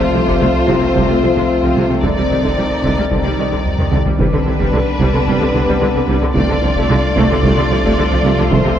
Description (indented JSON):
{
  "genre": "cinematic, hybrid orchestral and electronic film score",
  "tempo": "111 BPM",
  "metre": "4/4",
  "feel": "straight",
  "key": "unclear",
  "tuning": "A4 = 440 Hz",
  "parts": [
    { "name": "warm symphonic violin section", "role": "melody", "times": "0.0-8.8 s", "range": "B4 to D5", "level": "-21 LUFS", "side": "left 4 dB", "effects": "none" },
    { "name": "warm symphonic violin section", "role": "second line", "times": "0.0-8.8 s", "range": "D4 to F4", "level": "-24 LUFS", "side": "left 3 dB", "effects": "none" },
    { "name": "warm symphonic viola section", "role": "accompaniment", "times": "0.0-8.7 s", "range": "C3 to A3", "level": "-21 LUFS", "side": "right 1 dB", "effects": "none" },
    { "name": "dark trombone section", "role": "sustained chords", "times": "0.0-8.8 s", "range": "D3 to A3", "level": "-25 LUFS", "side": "right 2 dB", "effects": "none" },
    { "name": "deep dark ambient pad", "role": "sustained chords", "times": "0.0-8.8 s", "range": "Eb3 to D5", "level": "-24 LUFS", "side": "equal", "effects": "chorus, built-in reverb" },
    { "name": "mellow French horn section", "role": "sustained chords", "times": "0.0-8.8 s", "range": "A3 to D5", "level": "-21 LUFS", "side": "left 4 dB", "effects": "none" },
    { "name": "warm sub bass", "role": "bass", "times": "0.0-8.8 s", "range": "C2", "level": "-22 LUFS", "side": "equal", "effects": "none" },
    { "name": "warm symphonic cello section", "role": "bass", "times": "0.0-8.7 s", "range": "C3", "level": "-22 LUFS", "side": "right 3 dB", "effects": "none" },
    { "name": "mellow tuba", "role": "bass", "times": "0.1-8.6 s", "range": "C2", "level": "-23 LUFS", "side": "right 3 dB", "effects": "none" },
    { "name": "warm symphonic double bass section", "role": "bass", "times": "0.1-8.6 s", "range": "C2", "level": "-23 LUFS", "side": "right 2 dB", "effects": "none" },
    { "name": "taiko ensemble", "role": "drums", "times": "0.3-8.8 s", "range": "none", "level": "-22 LUFS", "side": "equal", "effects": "none" }
  ],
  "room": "moderate scoring stage reverb, RT60 1.6 s",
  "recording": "worn, warbling old tape, cassette tape, warbly pitch drift",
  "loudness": "-12 LUFS",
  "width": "side -10 dB against mid",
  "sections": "0.0-4.2 A section; 4.2-8.8 B section",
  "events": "drum fill 3.6-4.2",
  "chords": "0.0 F/C; 2.0 Cmadd9; 4.2 G/C; 6.4 Dm/C",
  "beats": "0.41 0.95 1.49 | 2.03 2.57 3.11 3.65 | 4.19 4.73 5.27 5.81 | 6.35 6.89 7.43 7.97 | 8.51"
}